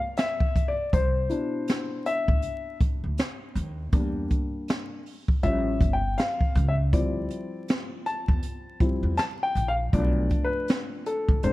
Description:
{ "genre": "hip hop, jazz-hop", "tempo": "80 BPM", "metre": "4/4", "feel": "swing 60% on 16ths", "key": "unclear", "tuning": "A4 = 440 Hz", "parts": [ { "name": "dark concert grand piano", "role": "accompaniment", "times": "0.2-11.5 s", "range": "B2 to A5", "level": "-28 LUFS", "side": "left 2 dB", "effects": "none" }, { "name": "jazz brush drum kit", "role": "drums", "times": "0.2-11.5 s", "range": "hi-hat, kick drum, snare drum", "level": "-26 LUFS", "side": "equal", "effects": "none" }, { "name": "upright bass", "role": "bass", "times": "0.9-11.5 s", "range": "G1 to E2", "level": "-27 LUFS", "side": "equal", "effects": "none" } ], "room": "small room ambience", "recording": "dark, warm production, vinyl crackle", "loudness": "-24 LUFS", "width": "side -17 dB against mid", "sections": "0.0-11.5 A section", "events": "break 0.0-0.9; grand piano solo 0.0-11.5", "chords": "0.0 Dsus2; 0.9 Cmaj9; 3.9 Em7b5; 5.4 A7b13; 6.9 Dm11; 9.9 Bm7b5", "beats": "0.18 | 0.93 1.68 2.43 3.18 | 3.93 4.68 5.43 6.18 | 6.93 7.68 8.43 9.18 | 9.93 10.68 11.43" }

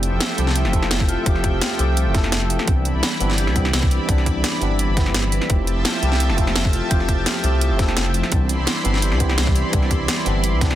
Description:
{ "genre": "liquid drum and bass", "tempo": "170 BPM", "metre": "4/4", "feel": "straight", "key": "F lydian", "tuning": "A4 = 441 Hz", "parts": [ { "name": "tine electric piano", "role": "accompaniment", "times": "0.0-10.8 s", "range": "E3 to E5", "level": "-26 LUFS", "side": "equal", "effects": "overdrive, fast stereo tremolo, tape echo" }, { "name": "lush unison pad", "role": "sustained chords", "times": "0.0-10.8 s", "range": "F3 to C6", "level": "-26 LUFS", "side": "equal", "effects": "chorus, sidechain pumping" }, { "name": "dark detuned saw bass", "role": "bass", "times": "0.0-10.8 s", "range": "F1 to C2", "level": "-21 LUFS", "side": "equal", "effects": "none" }, { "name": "drum and bass drum kit", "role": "drums", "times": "0.0-10.8 s", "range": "hi-hat, snare drum", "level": "-23 LUFS", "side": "right 1 dB", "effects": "overdrive" }, { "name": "vibraphone with medium hard mallets", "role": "arpeggios", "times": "0.2-10.8 s", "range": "D4 to B4", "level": "-31 LUFS", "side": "left 3 dB", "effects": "tape echo" }, { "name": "electronic kick drum", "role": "drums", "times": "0.7-10.7 s", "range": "none", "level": "-20 LUFS", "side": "equal", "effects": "overdrive" } ], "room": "light reverb", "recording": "dense, heavily limited modern master", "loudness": "-17 LUFS", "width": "side -12 dB against mid", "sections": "0.0-10.8 A section", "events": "none", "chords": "0.0 Fmaj9; 2.7 Cmaj9; 5.5 Fmaj9; 8.3 Cmaj9", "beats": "0.20 0.56 0.91 | 1.26 1.62 1.97 2.32 | 2.67 3.03 3.38 3.73 | 4.09 4.44 4.79 5.14 | 5.50 5.85 6.20 6.56 | 6.91 7.26 7.62 7.97 | 8.32 8.67 9.03 9.38 | 9.73 10.09 10.44" }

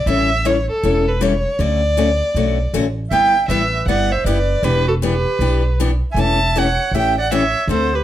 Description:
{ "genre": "acoustic string swing (jazz manouche)", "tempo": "158 BPM", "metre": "4/4", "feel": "swing 63% on 8ths", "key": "D major, G major from 3.1 s", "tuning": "A4 = 443 Hz", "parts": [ { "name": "warm violin", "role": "melody", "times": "0.0-8.0 s", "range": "A4 to A5", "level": "-19 LUFS", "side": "right 1 dB", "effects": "plate reverb" }, { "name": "picked steel-string acoustic guitar", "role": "accompaniment", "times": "0.1-7.9 s", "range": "D3 to A4", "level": "-21 LUFS", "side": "left 6 dB", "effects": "none" }, { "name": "upright bass", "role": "bass", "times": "0.1-8.0 s", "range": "E1 to D2", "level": "-20 LUFS", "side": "right 1 dB", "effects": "none" }, { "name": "growling clarinet", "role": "second line", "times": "3.1-8.0 s", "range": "F#4 to E5", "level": "-24 LUFS", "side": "right 4 dB", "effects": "none" } ], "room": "moderate studio reverb, RT60 0.6 s", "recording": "none", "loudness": "-15 LUFS", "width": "side -12 dB against mid", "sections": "0.0-3.1 A section; 3.1-8.0 B section", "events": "none", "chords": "0.1 A7; 1.6 Dmaj7; 3.1 G6; 4.6 Em7; 6.2 A7/E", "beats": "| 0.06 0.44 0.82 1.21 | 1.59 1.97 2.35 2.73 | 3.11 3.49 3.87 4.25 | 4.63 5.01 5.39 5.77 | 6.16 6.54 6.92 7.30 | 7.68" }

